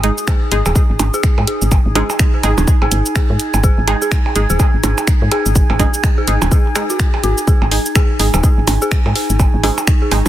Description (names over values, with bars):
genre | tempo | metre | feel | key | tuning
minimal techno | 125 BPM | 4/4 | swing 59% on 16ths | unclear | A4 = 439 Hz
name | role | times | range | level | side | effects
filtered dub chord stab | stabs | 0.0-10.2 s | G#3 to G#4 | -23 LUFS | right 2 dB | wide subtle chorus, tape echo
woody FM bass | bass | 0.0-10.3 s | D#1 to G#2 | -16 LUFS | equal | sidechain pumping
house drum kit | drums | 0.0-10.3 s | cabasa, finger snaps, hi-hat | -21 LUFS | equal | soft clipping on snare
warbly tape-like pad | texture | 0.0-10.3 s | D#4 to G#6 | -22 LUFS | right 1 dB | chorus, built-in reverb, sidechain pumping
dark detuned synth bell | riff | 0.3-10.0 s | F#4 to G#4 | -24 LUFS | left 2 dB | chorus, sidechain pumping, tape echo
electronic kick drum | drums | 0.3-10.0 s | none | -13 LUFS | equal | none
percussion blips | percussion | 0.3-10.3 s | none | -22 LUFS | right 5 dB | none
room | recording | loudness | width
digital ambience | dense, heavily limited modern master | -12 LUFS | side -13 dB against mid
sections
0.0-10.3 A section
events
none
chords
0.0 G#5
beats
0.28 0.76 1.24 | 1.72 2.20 2.68 3.16 | 3.64 4.12 4.60 5.08 | 5.56 6.04 6.52 7.00 | 7.48 7.96 8.44 8.92 | 9.40 9.88